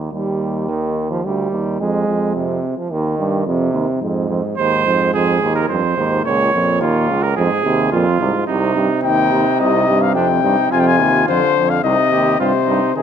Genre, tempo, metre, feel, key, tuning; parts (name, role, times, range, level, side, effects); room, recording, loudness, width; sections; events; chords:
classical, imitative canzona for brass ensemble; 108 BPM; 4/4; straight; F minor; A4 = 440 Hz
clear euphonium; bass; 0.0-13.0 s; C2 to C3; -20 LUFS; right 2 dB
clear trombone; accompaniment; 0.1-13.0 s; G2 to Ab3; -20 LUFS; right 2 dB
warm trumpet; second line; 4.6-13.0 s; D4 to Db5; -19 LUFS; right 5 dB
mellow trumpet; melody; 9.0-13.0 s; Ab4 to Ab5; -16 LUFS; left 10 dB
moderate scoring stage reverb, RT60 2.0 s; -14 LUFS; side -8 dB against mid
0.0-13.0 A section
0.0 Eb; 0.7 Ebmaj9; 1.8 Fm; 2.9 Cm/Eb; 4.0 Fm; 6.2 Bbm/Db; 7.4 Fm; 8.5 Cm; 10.7 Fm; 11.8 Cm